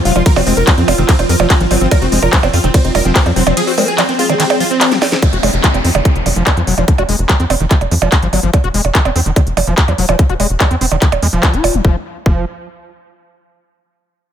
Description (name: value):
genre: psychedelic trance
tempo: 145 BPM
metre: 4/4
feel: straight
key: F phrygian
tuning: A4 = 439 Hz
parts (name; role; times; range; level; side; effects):
- swarming drone; sustained chords; 0.0-5.2 s; F3 to F4; -20 LUFS; equal; built-in reverb, sidechain pumping
- supersaw stab; melody; 0.1-5.2 s; C4 to Bb4; -19 LUFS; equal; phaser, sidechain pumping, ping-pong delay
- vowel-sweep wobble bass; second line; 0.1-4.6 s; Ab3 to F4; -25 LUFS; left 4 dB; chorus, sidechain pumping, high-pass filter, ping-pong delay
- screaming distorted acid line; riff; 0.1-12.5 s; Eb3 to Gb4; -20 LUFS; moving between left 8 dB and right 6 dB; distortion, chorus, auto-pan, sidechain pumping, dub echo
- tight sequencer bass; bass; 0.1-12.5 s; F1 to F2; -16 LUFS; equal; none
- techno drum kit; drums; 0.1-11.8 s; handclaps, hi-hat, percussion blips, ride cymbal, snare drum; -16 LUFS; right 3 dB; overdrive, studio reverb
- electronic kick drum; drums; 0.3-12.3 s; none; -11 LUFS; equal; studio reverb
- downlifter; sound effects; 5.2-8.5 s; none; -23 LUFS; left 1 dB; none
room: little or no reverb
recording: none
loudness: -10 LUFS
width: side -9 dB against mid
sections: 0.0-5.2 A section; 5.2-11.8 B section; 11.8-13.5 C section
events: drop 0.0-5.2; drum fill 4.9-5.2; filter sweep on analog synth bass 5.2-11.8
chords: 0.0 F5; 11.8 N.C.